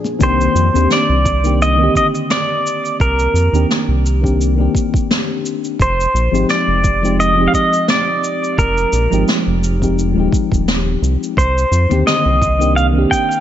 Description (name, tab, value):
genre	sunset chillout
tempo	86 BPM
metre	4/4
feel	swing 55% on 16ths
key	C minor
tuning	A4 = 440 Hz
part	mellow FM electric piano	accompaniment	0.0-13.4 s	D3 to Ab4	-19 LUFS	moving between left 10 dB and right 4 dB	chorus, auto-pan, tape echo
part	congas	percussion	0.0-0.2, 11.9-12.0 s	none	-27 LUFS	left 4 dB	none
part	cabasa and snare drum	drums	0.1-13.4 s	none	-21 LUFS	equal	low-pass filter on snare, low-pass filter on perc, low-pass filter on room
part	pedal steel guitar	melody	0.2-13.4 s	Bb4 to G5	-16 LUFS	equal	tape echo
part	round analog bass	bass	0.2-13.1 s	Eb1 to F2	-16 LUFS	right 1 dB	none
part	electronic kick drum	drums	0.2-13.3 s	none	-18 LUFS	right 1 dB	none
room	light reverb, small room ambience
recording	nothing above 7.8 kHz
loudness	-12 LUFS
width	side -11 dB against mid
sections	0.2-13.4 A section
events	none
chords	0.2 Cm9; 5.8 Fm9; 11.4 Cm9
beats	| 0.21 0.91 1.60 2.30 | 3.00 3.70 4.39 5.09 | 5.79 6.49 7.19 7.88 | 8.58 9.28 9.98 10.67 | 11.37 12.07 12.77